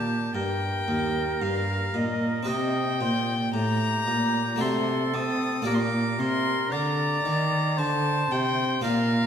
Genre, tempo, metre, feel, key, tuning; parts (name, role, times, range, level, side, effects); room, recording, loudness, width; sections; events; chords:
classical, baroque-style sonata movement with continuo; 56 BPM; 3/4; straight; G minor; A4 = 439 Hz
warm violin; melody; 0.0-9.3 s; Eb5 to Eb6; -29 LUFS; left 5 dB
warm oboe; second line; 0.0-9.3 s; G4 to Eb5; -30 LUFS; right 4 dB
harpsichord; accompaniment; 0.0-9.3 s; Eb2 to Eb5; -29 LUFS; left 1 dB
dark cello; bass; 0.0-9.3 s; Eb2 to C4; -28 LUFS; right 1 dB
wet scoring stage reverb, RT60 1.7 s; -23 LUFS; side -8 dB against mid
0.0-9.3 A section
0.0 Eb; 2.5 Cm; 4.6 D7/C; 5.7 Gm/Bb